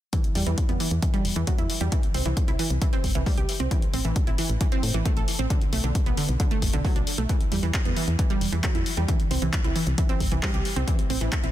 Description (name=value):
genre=uplifting trance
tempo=134 BPM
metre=4/4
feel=straight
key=E minor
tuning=A4 = 440 Hz
part: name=wide unison pluck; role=arpeggios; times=0.1-11.5 s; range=D3 to A4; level=-29 LUFS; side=right 3 dB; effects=sidechain pumping, ping-pong delay
part: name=electronic kick drum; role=drums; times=0.1-11.4 s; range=none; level=-24 LUFS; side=equal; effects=none
part: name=punchy analog drum machine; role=drums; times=0.1-11.5 s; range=handclaps, hi-hat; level=-32 LUFS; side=left 2 dB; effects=overdrive
part: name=solid FM bass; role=bass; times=0.4-11.5 s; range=E1 to A2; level=-26 LUFS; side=equal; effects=sidechain pumping
room=digital ambience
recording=dense, heavily limited modern master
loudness=-22 LUFS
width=side -13 dB against mid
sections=0.1-11.5 A section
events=none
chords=0.1 Em; 1.9 C; 3.7 Am; 5.5 Bm7; 7.3 Em; 9.1 C; 10.9 Am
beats=| 0.13 0.58 1.02 1.47 | 1.92 2.37 2.82 3.26 | 3.71 4.16 4.61 5.05 | 5.50 5.95 6.40 6.85 | 7.29 7.74 8.19 8.64 | 9.09 9.53 9.98 10.43 | 10.88 11.32